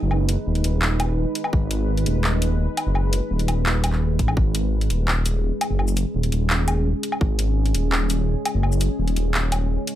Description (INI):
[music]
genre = half-time drum and bass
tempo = 169 BPM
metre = 4/4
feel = half-time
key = G# minor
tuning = A4 = 441 Hz
[part]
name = deep dark ambient pad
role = sustained chords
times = 0.0-10.0 s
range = G#3 to B4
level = -28 LUFS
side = equal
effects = chorus, built-in reverb, sidechain pumping
[part]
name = dark detuned saw bass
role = bass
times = 0.0-9.8 s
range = D#1 to A1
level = -21 LUFS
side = equal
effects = none
[part]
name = drum and bass drum kit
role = drums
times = 0.1-9.9 s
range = handclaps, hi-hat, shaker, woodblock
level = -25 LUFS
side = left 1 dB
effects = overdrive
[part]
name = electronic kick drum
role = drums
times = 1.5-1.6, 4.2-4.4, 7.2-7.3 s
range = none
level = -20 LUFS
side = equal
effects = overdrive
[sound]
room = little or no reverb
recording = none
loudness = -19 LUFS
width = side -12 dB against mid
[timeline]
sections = 0.0-10.0 A section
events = none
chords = 0.0 G#m